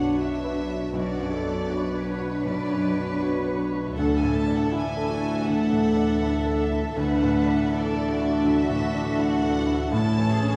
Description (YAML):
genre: cinematic, emotional film score for orchestra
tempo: 80 BPM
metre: 4/4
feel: rubato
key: unclear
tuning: A4 = 440 Hz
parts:
  - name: warm chamber violin section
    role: melody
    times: 0.0-10.6 s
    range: C#5 to A5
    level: -37 LUFS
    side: equal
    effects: none
  - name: warm studio violin section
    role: second line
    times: 0.0-10.6 s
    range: A4 to E5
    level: -38 LUFS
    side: equal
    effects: none
  - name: dark studio viola section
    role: accompaniment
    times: 0.0-10.6 s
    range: C#4 to F#4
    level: -33 LUFS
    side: equal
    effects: none
  - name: warm baby grand piano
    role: accompaniment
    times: 0.0-10.6 s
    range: B1 to B4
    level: -30 LUFS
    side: equal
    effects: none
  - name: mellow French horn section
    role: sustained chords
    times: 0.0-10.6 s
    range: E3 to D4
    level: -32 LUFS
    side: equal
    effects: none
  - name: concert harp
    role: arpeggios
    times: 0.0-10.6 s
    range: A2 to B4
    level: -37 LUFS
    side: equal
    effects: none
  - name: rich symphonic double bass section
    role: bass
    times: 0.0-10.6 s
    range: A1 to D2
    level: -32 LUFS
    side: equal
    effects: none
  - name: warm studio cello section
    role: bass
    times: 0.0-10.6 s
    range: D4 to B4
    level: -35 LUFS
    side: equal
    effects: none
room: wet recital hall reverb, RT60 1.6 s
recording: heard from further back in the room, studio reverb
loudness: -24 LUFS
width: mono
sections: 0.0-10.6 A section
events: none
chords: 0.0 Bmadd9; 4.0 Dadd9; 9.9 A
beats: 0.19 | 0.95 1.71 2.46 3.21 | 3.98 4.72 5.46 6.22 | 6.97 7.72 8.46 9.19 | 9.94